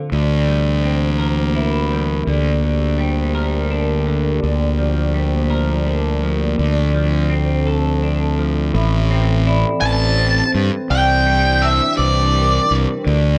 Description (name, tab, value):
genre	post-rock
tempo	56 BPM (dotted quarters)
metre	6/8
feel	straight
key	unclear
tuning	A4 = 440 Hz
part	dark analog pad	sustained chords	0.0-13.4 s	D3 to D5	-27 LUFS	equal	chorus
part	semi-hollow electric guitar	arpeggios	0.0-13.4 s	A2 to Bb4	-29 LUFS	equal	analog chorus, slapback echo
part	vibraphone with medium mallets	arpeggios	0.0-13.4 s	A4 to E5	-29 LUFS	equal	slapback echo
part	fuzz fingered electric bass	bass	0.1-13.4 s	A1 to G2	-19 LUFS	equal	overdrive
part	octave-fuzz lead guitar	melody	9.8-12.7 s	D5 to A5	-19 LUFS	equal	distortion, slapback echo
room	moderate recital hall reverb, RT60 1.6 s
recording	none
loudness	-17 LUFS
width	mono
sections	0.0-8.7 A section; 8.7-13.4 B section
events	none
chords	0.1 C7/D; 2.3 Gm/D; 4.4 Bb6/D; 6.6 Dm7; 8.7 Am; 10.9 Cadd9